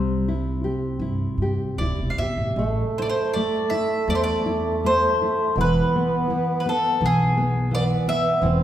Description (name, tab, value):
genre	fado-style ballad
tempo	75-86 BPM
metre	4/4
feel	rubato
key	A minor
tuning	A4 = 440 Hz
part	mandolin	melody	0.0-8.6 s	G#4 to F5	-24 LUFS	equal	none
part	nylon-string guitar	accompaniment	0.0-8.6 s	C3 to G4	-25 LUFS	left 1 dB	none
part	upright bass	bass	0.0-8.6 s	D1 to G2	-26 LUFS	equal	none
part	mellow bassoon	second line	2.6-8.6 s	A3 to C4	-26 LUFS	right 2 dB	tape echo
room	wet recital hall reverb, RT60 1.8 s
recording	heard from further back in the room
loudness	-20 LUFS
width	side -11 dB against mid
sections	0.0-2.6 A section; 2.6-8.6 B section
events	none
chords	0.0 C; 2.6 Am; 5.6 E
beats	0.27 1.01 1.78 | 2.57 3.33 4.08 4.83 | 5.57 6.29 7.01 7.71 | 8.42